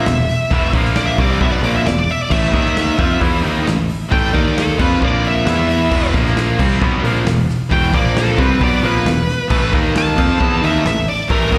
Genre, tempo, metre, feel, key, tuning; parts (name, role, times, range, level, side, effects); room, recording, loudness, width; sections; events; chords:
heavy metal; 134 BPM; 4/4; straight; A4 = 438 Hz
high-gain lead guitar; melody; 0.0-11.6 s; A4 to A5; -22 LUFS; equal; distortion, slapback echo, delay
distorted electric guitar; riff; 0.0-11.6 s; E2 to F4; -26 LUFS; equal
heavy high-gain guitar; riff; 0.0-11.6 s; E2 to F4; -26 LUFS; equal; distortion, slapback echo
tight distorted guitar; riff; 0.0-11.6 s; E2 to F4; -24 LUFS; equal; distortion, slapback echo
picked electric bass; bass; 0.0-11.6 s; E1 to F2; -21 LUFS; equal
modern studio drum kit; drums; 0.1-11.6 s; crash cymbal, hi-hat, kick drum, snare drum; -22 LUFS; equal
little or no reverb; live gig heard through the venue's PA, recital hall reverb; -16 LUFS; mono
0.0-11.6 A section
lead electric guitar solo 0.0-11.6
0.0 E5; 0.7 A#5; 1.2 Em; 2.3 A5; 2.5 D#5; 3.0 A5; 4.3 D#5; 4.8 F5; 5.0 A#5; 5.5 E5; 6.1 A#5; 6.6 Em; 7.9 A#5; 8.4 Em; 9.5 A5; 9.7 D#5; 10.2 A5